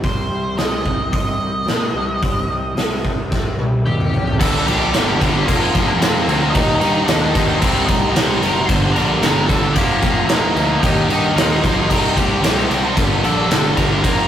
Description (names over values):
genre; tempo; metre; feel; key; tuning
quiet-loud alternative rock; 112 BPM; 4/4; straight; unclear; A4 = 440 Hz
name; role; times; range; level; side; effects
octave-fuzz lead guitar; melody; 0.0-14.3 s; C4 to C6; -23 LUFS; equal; distortion
twangy electric guitar; arpeggios; 0.0-4.4 s; C3 to Eb4; -31 LUFS; left 3 dB; none
fuzz picked electric bass; bass; 0.0-14.3 s; F1 to Bb2; -22 LUFS; equal; overdrive
big rock drum kit; drums; 0.0-14.2 s; crash cymbal, hi-hat, kick drum, snare drum, toms; -18 LUFS; equal; none
dark studio string section; sustained chords; 4.4-14.3 s; Eb3 to Bb5; -32 LUFS; left 2 dB; none
thick fuzz guitar; riff; 4.4-14.3 s; F2 to Eb4; -22 LUFS; equal; distortion
tight distorted guitar; riff; 4.4-14.3 s; G2 to Eb4; -21 LUFS; equal; distortion
room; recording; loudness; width
moderate studio reverb, RT60 0.5 s; rough rehearsal-room recording, warm saturation; -14 LUFS; side -10 dB against mid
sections
0.0-4.4 A section; 4.4-14.3 B section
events
drum fill 3.3-4.4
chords
0.0 Cm; 4.4 Gmadd9; 5.5 Bbsus2/F; 6.6 Eb; 7.6 Cmadd9; 8.7 Gmadd9; 9.8 Bbsus2/F; 10.8 Eb; 11.9 Cmadd9; 13.0 Gmadd9